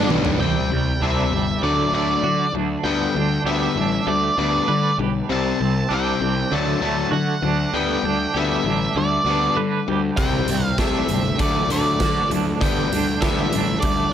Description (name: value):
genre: quiet-loud alternative rock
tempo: 98 BPM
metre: 4/4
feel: straight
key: G major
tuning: A4 = 439 Hz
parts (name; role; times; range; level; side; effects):
- octave-fuzz lead guitar; melody; 0.0-14.1 s; D5 to A5; -24 LUFS; right 3 dB; distortion
- crunchy overdriven guitar; riff; 0.0-14.1 s; G2 to D4; -23 LUFS; left 8 dB; none
- fuzz picked electric bass; bass; 0.0-14.0 s; G1 to D3; -25 LUFS; right 1 dB; overdrive
- raw garage drum kit; drums; 0.1-0.4, 10.2-14.0 s; hi-hat, kick drum, snare drum, toms; -24 LUFS; right 1 dB; none
- twangy electric guitar; arpeggios; 0.4-14.1 s; C3 to B4; -27 LUFS; right 8 dB; tremolo
room: light reverb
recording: none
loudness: -18 LUFS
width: side -9 dB against mid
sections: 0.4-14.1 A section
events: drum fill 0.1-0.4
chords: 0.4 Cadd9; 1.6 D; 2.8 Gadd9; 5.3 Csus2; 6.5 D; 7.7 Gadd9; 10.2 Cadd9; 11.4 D; 12.6 Gadd9